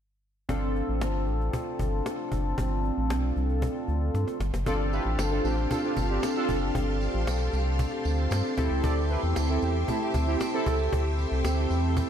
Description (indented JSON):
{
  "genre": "early-eighties boogie funk",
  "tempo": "115 BPM",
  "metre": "4/4",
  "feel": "straight",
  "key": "unclear",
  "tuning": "A4 = 440 Hz",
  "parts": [
    { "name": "chorused polysynth", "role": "accompaniment", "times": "0.5-12.1 s", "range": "C4 to A4", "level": "-30 LUFS", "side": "equal", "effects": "none" },
    { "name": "rubbery square bass", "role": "bass", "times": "0.5-12.0 s", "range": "F#1 to G2", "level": "-27 LUFS", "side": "equal", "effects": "none" },
    { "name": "cajon", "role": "drums", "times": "0.5-12.1 s", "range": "none", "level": "-36 LUFS", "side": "equal", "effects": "none" },
    { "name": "analog synth brass", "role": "second line", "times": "4.7-10.7 s", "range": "A3 to D5", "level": "-32 LUFS", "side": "right 4 dB", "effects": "chorus" },
    { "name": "string machine, violins", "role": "sustained chords", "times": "4.7-12.1 s", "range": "G4 to D6", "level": "-36 LUFS", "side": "right 1 dB", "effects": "ensemble chorus" },
    { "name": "tambourine", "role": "percussion", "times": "4.7-12.1 s", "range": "none", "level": "-45 LUFS", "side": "right 8 dB", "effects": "none" }
  ],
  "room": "moderate lush hall reverb, RT60 1.8 s, small room ambience",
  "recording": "dreamy mix soaked in reverb",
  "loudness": "-25 LUFS",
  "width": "side -9 dB against mid",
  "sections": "0.5-4.7 A section; 4.7-12.1 B section",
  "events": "drum fill 4.1-4.7",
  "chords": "0.5 G9sus4; 4.4 N.C.; 4.7 G9sus4; 8.6 D9sus4",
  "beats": "| 0.49 1.01 1.53 2.06 | 2.58 3.10 3.62 4.14 | 4.67 5.19 5.71 6.23 | 6.75 7.27 7.79 8.32 | 8.84 9.36 9.88 10.40 | 10.93 11.45 11.97"
}